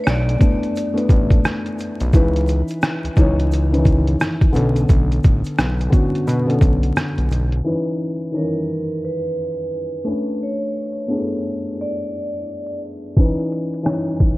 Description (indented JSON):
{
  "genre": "lo-fi hip hop",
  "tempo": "87 BPM",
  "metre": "4/4",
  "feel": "swing 61% on 16ths",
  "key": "C# phrygian",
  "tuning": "A4 = 439 Hz",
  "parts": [
    { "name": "vibraphone with hard mallets", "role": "melody", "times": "0.0-1.4, 8.4-12.8 s", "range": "A#4 to D5", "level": "-27 LUFS", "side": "right 1 dB", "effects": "tape echo" },
    { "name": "felt-muted upright piano", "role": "accompaniment", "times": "0.0-14.4 s", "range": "D3 to C#5", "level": "-22 LUFS", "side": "left 1 dB", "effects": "cassette tape" },
    { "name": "fat analog bass", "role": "bass", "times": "0.1-7.6 s", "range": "A1 to B2", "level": "-19 LUFS", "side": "equal", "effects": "none" },
    { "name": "trip hop sampler-style drum kit", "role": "drums", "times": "0.1-7.6, 13.2-14.4 s", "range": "hi-hat, kick drum, rim click", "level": "-16 LUFS", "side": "equal", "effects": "none" },
    { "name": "egg shaker", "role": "percussion", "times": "0.1-7.6 s", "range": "none", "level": "-50 LUFS", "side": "right 5 dB", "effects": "none" }
  ],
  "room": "light reverb, studio ambience",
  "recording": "dark, warm production, vinyl crackle, low-pass filter",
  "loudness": "-16 LUFS",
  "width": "side -20 dB against mid",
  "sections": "0.0-7.7 A section; 7.7-14.4 B section",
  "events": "filter sweep 7.7-14.4",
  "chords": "0.0 Bm9; 2.1 C#m9; 4.5 Bm9; 7.7 C#m9; 10.1 Bm9; 13.2 C#m9"
}